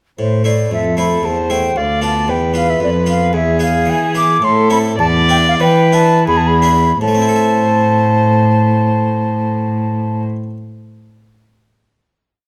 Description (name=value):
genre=classical, baroque-style sonata movement with continuo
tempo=80-115 BPM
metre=3/4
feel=straight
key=A minor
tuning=A4 = 439 Hz
part: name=concert flute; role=melody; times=0.2-10.2 s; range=C5 to D6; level=-19 LUFS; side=equal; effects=none
part: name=harpsichord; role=accompaniment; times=0.2-10.6 s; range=D2 to E5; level=-22 LUFS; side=equal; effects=none
part: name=warm cello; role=bass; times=0.2-10.2 s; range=D2 to E3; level=-19 LUFS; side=equal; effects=none
part: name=warm violin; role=second line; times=0.7-10.2 s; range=G#4 to D5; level=-21 LUFS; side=equal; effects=none
room=moderate recital hall reverb, RT60 1.5 s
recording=close, detailed microphones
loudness=-14 LUFS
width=mono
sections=0.2-7.0 A section; 7.0-11.5 final chord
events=slowing down 2.5-7.0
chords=0.2 Am; 1.8 Bdim/D; 3.3 E; 4.4 Am; 5.0 E5; 6.3 E7; 7.0 Am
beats=| 0.19 0.72 1.24 | 1.77 2.29 2.81 | 3.33 3.87 4.42 | 5.00 5.61 6.27 | 7.00 7.75 8.49 | 9.23 9.97